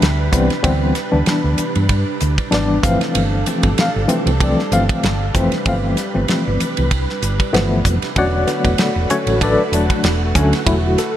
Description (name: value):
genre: electric jazz fusion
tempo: 96 BPM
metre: 4/4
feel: swing 55% on 16ths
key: unclear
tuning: A4 = 440 Hz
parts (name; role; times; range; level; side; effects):
- mellow tine electric piano; accompaniment; 0.0-11.2 s; D3 to F#5; -18 LUFS; left 2 dB; medium tremolo
- ensemble organ-string; sustained chords; 0.0-11.2 s; C3 to B4; -24 LUFS; right 1 dB; ensemble chorus
- hollow-body short-scale fingered electric bass; bass; 0.0-10.9 s; E1 to G2; -19 LUFS; right 1 dB; none
- damped 70s drum kit; drums; 0.0-11.1 s; hi-hat, kick drum, ride cymbal, snare drum; -20 LUFS; right 1 dB; none
room: light reverb, studio reverb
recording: none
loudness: -14 LUFS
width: side -11 dB against mid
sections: 0.0-11.2 A section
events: none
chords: 0.0 D13sus4; 2.8 G13sus4; 8.2 E13sus4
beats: 0.01 | 0.64 1.27 1.89 2.52 | 3.15 3.78 4.40 5.03 | 5.66 6.29 6.91 7.54 | 8.17 8.80 9.42 10.05 | 10.68